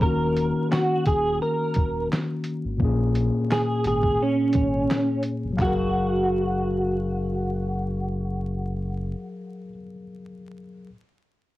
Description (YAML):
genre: lo-fi hip hop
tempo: 86 BPM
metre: 4/4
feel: swing 56% on 16ths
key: F# major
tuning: A4 = 440 Hz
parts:
  - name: clean electric guitar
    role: melody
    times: 0.0-9.7 s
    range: C#4 to A#4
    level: -25 LUFS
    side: right 1 dB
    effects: ensemble chorus, cassette tape
  - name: mellow tine electric piano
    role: accompaniment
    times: 0.0-10.9 s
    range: A#2 to E#5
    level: -27 LUFS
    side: left 2 dB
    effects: fast stereo tremolo, cassette tape
  - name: sub bass with octave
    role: bass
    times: 0.0-9.1 s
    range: D#1 to A#1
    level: -29 LUFS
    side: equal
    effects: transformer saturation
  - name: dusty soul sampler-style drum kit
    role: drums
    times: 0.0-5.8 s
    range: handclaps, hi-hat, kick drum, snare drum, toms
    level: -25 LUFS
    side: equal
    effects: cassette tape
room: moderate studio reverb, RT60 0.6 s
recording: home recording on cassette, vinyl crackle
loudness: -22 LUFS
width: side -16 dB against mid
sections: 0.0-5.6 A section; 5.6-8.4 B section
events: none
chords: 0.0 D#m7; 2.8 A#m7; 5.6 F#maj9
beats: | 0.01 0.71 1.41 2.10 | 2.80 3.50 4.20 4.89 | 5.59 6.29 6.99 7.68